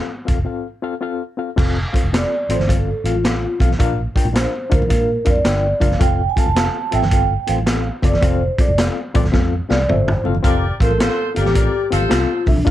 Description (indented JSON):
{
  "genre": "uptempo 1960s-style soul",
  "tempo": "108 BPM",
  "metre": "4/4",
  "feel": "swing 66% on 8ths",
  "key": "F major",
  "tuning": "A4 = 439 Hz",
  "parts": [
    { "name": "overdriven reed electric piano", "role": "accompaniment", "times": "0.0-12.7 s", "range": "C4 to G5", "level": "-24 LUFS", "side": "left 6 dB", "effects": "fast tremolo" },
    { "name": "vintage muted fingered electric bass", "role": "bass", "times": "0.3-12.7 s", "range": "E1 to Bb2", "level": "-20 LUFS", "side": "equal", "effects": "none" },
    { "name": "vintage drum kit", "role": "drums", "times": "0.3-12.7 s", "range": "crash cymbal, hi-hat, kick drum, snare drum, toms", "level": "-19 LUFS", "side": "equal", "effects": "none" },
    { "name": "vibraphone with soft mallets", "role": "melody", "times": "1.6-12.7 s", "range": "D4 to A5", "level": "-21 LUFS", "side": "right 1 dB", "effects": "plate reverb" },
    { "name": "congas", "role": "percussion", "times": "1.6-12.7 s", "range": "none", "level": "-30 LUFS", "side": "right 3 dB", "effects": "none" },
    { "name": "mellow horn section", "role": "second line", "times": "10.4-12.4 s", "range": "F4 to D5", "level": "-24 LUFS", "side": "equal", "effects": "none" }
  ],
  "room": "light reverb",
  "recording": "dark, warm production",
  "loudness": "-15 LUFS",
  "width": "side -13 dB against mid",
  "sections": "0.0-1.6 A section; 1.6-10.4 B section; 10.4-12.7 A section",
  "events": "break 0.5-1.6; vibraphone solo 1.6-10.4; drum fill 9.3-10.4",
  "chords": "0.0 F; 3.8 Bb; 6.0 F"
}